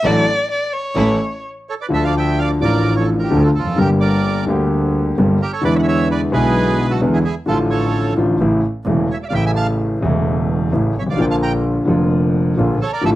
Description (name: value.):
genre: tango.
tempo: 130 BPM.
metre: 4/4.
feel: rubato.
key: D harmonic minor.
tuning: A4 = 438 Hz.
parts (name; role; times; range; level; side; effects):
warm violin; second line; 0.0-1.4 s; C#5 to D5; -19 LUFS; left 1 dB; cassette tape.
dark concert grand piano; accompaniment; 0.0-13.2 s; E1 to A4; -16 LUFS; left 1 dB; cassette tape.
warm studio string section; stabs; 0.0-1.2 s; A3 to F#4; -25 LUFS; right 3 dB; cassette tape.
clear double bass; bass; 0.0-13.2 s; E1 to E2; -22 LUFS; right 2 dB; none.
bandoneon; melody; 1.7-13.1 s; E4 to Bb5; -22 LUFS; right 4 dB; cassette tape.
room: moderate studio reverb, RT60 0.6 s.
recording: home recording on cassette.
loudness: -14 LUFS.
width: side -15 dB against mid.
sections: 0.0-1.9 A section; 1.9-13.2 B section.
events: violin solo 0.0-1.9.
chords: 0.0 D/A; 1.0 A; 1.9 Dm; 3.8 Gm; 5.6 E7; 7.5 Dm/A; 8.4 A; 11.2 Bb.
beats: | 0.03 0.50 0.96 1.44 | 1.91 2.38 2.85 3.32 | 3.78 4.25 4.71 5.17 | 5.63 6.09 6.55 7.01 | 7.47 7.93 8.40 8.87 | 9.33 9.80 10.27 10.73 | 11.19 11.65 12.11 12.57 | 13.03.